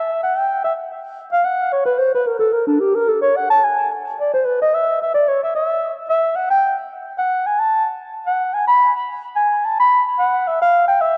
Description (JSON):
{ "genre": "jazz", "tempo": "220 BPM", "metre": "4/4", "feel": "swing 58% on 8ths", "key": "F# minor from 5.2 s", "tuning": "A4 = 440 Hz", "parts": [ { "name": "breathy clarinet", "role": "solo", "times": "0.0-11.2 s", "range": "D4 to B5", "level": "-18 LUFS", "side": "equal", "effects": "tape echo" } ], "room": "wet plate reverb, RT60 2.8 s", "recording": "dreamy mix soaked in reverb", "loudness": "-18 LUFS", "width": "mono", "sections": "0.0-5.2 A section; 5.2-11.2 A section", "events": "clarinet solo 0.0-11.2", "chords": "none" }